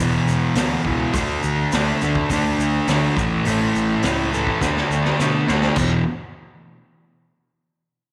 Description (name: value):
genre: garage rock duo or trio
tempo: 104 BPM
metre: 4/4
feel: straight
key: unclear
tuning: A4 = 440 Hz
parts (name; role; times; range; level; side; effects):
- fuzz guitar; riff; 0.0-6.0 s; E2 to D4; -22 LUFS; equal; distortion
- fuzz picked electric bass; bass; 0.0-6.0 s; E1 to B2; -29 LUFS; equal; overdrive
- tube shaker; percussion; 0.3-6.0 s; none; -41 LUFS; equal; none
- raw garage drum kit; drums; 0.6-5.9 s; crash cymbal, hi-hat, kick drum, snare drum; -28 LUFS; equal; none
room: moderate echo chamber reverb, RT60 1.9 s, small room ambience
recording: none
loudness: -20 LUFS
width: mono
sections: 0.0-5.8 A section; 5.8-8.1 B section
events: drum fill 4.6-5.8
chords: 0.0 E5; 1.2 D5; 3.2 A; 4.6 D5; 5.8 E5